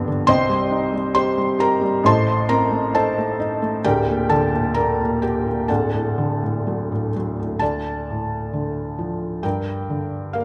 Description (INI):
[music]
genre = classical, lyrical solo piano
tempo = 61-70 BPM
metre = 4/4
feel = rubato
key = unclear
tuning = A4 = 440 Hz
[part]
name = felt-muted upright piano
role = solo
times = 0.0-10.4 s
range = D1 to C6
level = -21 LUFS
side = equal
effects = none
[sound]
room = moderate recital hall reverb, RT60 1.4 s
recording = none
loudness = -21 LUFS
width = mono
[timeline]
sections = 0.0-7.6 A section; 7.6-10.4 B section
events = none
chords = 0.3 Cm; 2.0 Adim; 3.8 Gm/D; 5.7 D; 7.6 Dm; 9.4 Gm